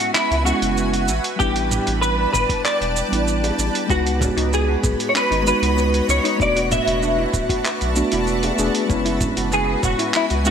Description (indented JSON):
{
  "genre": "sunset chillout",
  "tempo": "96 BPM",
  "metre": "4/4",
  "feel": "straight",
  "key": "C# phrygian",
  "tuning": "A4 = 440 Hz",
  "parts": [
    { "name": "semi-hollow electric guitar", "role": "melody", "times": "0.0-10.5 s", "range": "E4 to E5", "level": "-21 LUFS", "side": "equal", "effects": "ensemble chorus, ping-pong delay" },
    { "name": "mellow tine electric piano", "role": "accompaniment", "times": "0.0-10.5 s", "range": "G3 to G#4", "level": "-24 LUFS", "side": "moving between left 5 dB and right 5 dB", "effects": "auto-pan, ping-pong delay" },
    { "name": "shimmering ambient pad", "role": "sustained chords", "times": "0.0-10.5 s", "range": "G3 to B5", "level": "-27 LUFS", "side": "equal", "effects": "chorus, built-in reverb" },
    { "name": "dusty soul sampler-style drum kit", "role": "drums", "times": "0.0-10.5 s", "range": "handclaps, hi-hat, shaker, toms", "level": "-25 LUFS", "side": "right 2 dB", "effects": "overdrive, studio reverb" },
    { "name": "round analog bass", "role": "bass", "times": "0.3-10.5 s", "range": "D1 to C#2", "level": "-23 LUFS", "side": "equal", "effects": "tube saturation" },
    { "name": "electronic kick drum", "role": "drums", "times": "1.4-10.0 s", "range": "none", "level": "-25 LUFS", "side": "equal", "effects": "overdrive, studio reverb" },
    { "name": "bongos", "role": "percussion", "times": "3.4-4.3, 8.4-9.3 s", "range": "none", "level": "-34 LUFS", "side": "right 4 dB", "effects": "none" },
    { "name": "steel pan", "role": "arpeggios", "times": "3.9-10.5 s", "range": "B3 to F#4", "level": "-29 LUFS", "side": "left 1 dB", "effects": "ping-pong delay" },
    { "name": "wind-like tuned noise texture", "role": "texture", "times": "3.9-10.5 s", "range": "B4 to B5", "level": "-33 LUFS", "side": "equal", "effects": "built-in reverb" }
  ],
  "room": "light reverb, digital ambience",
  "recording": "none",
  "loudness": "-17 LUFS",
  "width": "side -7 dB against mid",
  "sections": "0.0-10.5 A section",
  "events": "none",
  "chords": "0.0 F#9sus4; 1.1 A9sus4; 3.9 C#9sus4; 6.4 E9sus4; 8.9 F#9sus4"
}